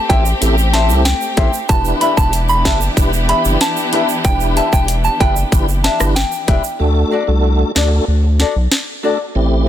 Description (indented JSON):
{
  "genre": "dancehall",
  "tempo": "94 BPM",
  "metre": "4/4",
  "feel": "straight",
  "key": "unclear",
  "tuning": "A4 = 442 Hz",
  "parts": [
    { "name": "soft synth bell", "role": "melody", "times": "0.0-6.6 s", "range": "G5 to B5", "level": "-19 LUFS", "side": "right 2 dB", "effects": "chorus, ping-pong delay" },
    { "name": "muted studio string section", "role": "sustained chords", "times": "0.0-6.8 s", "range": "E3 to G4", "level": "-22 LUFS", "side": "left 1 dB", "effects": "sidechain pumping" },
    { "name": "mellow tonewheel organ", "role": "accompaniment", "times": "0.1-9.7 s", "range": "A3 to B4", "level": "-21 LUFS", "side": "right 1 dB", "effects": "chorus vibrato, fast rotary speaker, sidechain pumping" },
    { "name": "flamenco guitar", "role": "arpeggios", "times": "0.1-9.2 s", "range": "D4 to E5", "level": "-22 LUFS", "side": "left 7 dB", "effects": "ping-pong delay" },
    { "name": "saturated sub bass", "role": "bass", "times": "0.1-9.7 s", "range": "E1 to D2", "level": "-16 LUFS", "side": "equal", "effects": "none" },
    { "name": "island pop drum kit", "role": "drums", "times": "0.1-8.9 s", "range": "hi-hat, kick drum, rim click, snare drum", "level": "-17 LUFS", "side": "equal", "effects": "none" },
    { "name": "egg shaker", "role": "percussion", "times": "0.3-6.8 s", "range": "none", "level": "-28 LUFS", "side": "right 11 dB", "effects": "none" }
  ],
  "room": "studio reverb",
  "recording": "dense, heavily limited modern master",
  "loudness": "-12 LUFS",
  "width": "side -11 dB against mid",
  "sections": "0.0-6.8 A section; 6.8-9.7 B section",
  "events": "kick muted 6.8-9.7",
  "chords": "0.0 Am7; 1.7 Em7; 6.8 D",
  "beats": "0.42 1.05 | 1.69 2.33 2.97 3.61 | 4.25 4.88 5.52 6.16 | 6.80 7.44 8.08 8.71 | 9.35"
}